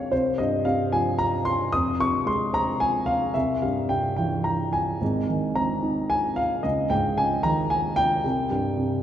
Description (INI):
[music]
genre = classical, lyrical solo piano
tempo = 112 BPM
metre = 3/4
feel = rubato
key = unclear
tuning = A4 = 440 Hz
[part]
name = dark baby grand piano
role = solo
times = 0.0-9.0 s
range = F1 to Eb6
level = -22 LUFS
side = equal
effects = none
[sound]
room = wet church reverb, RT60 3.4 s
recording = recorded in a church or concert hall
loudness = -22 LUFS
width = side -10 dB against mid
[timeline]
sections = 0.0-9.0 A section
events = none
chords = 0.1 Csus4; 1.7 Fm; 3.3 C; 5.0 Ab; 6.6 Dbsus2; 8.2 C5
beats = | 0.12 0.65 1.18 | 1.72 2.26 2.80 | 3.34 3.90 4.46 | 5.01 5.56 6.10 | 6.64 7.18 7.71 | 8.24 8.78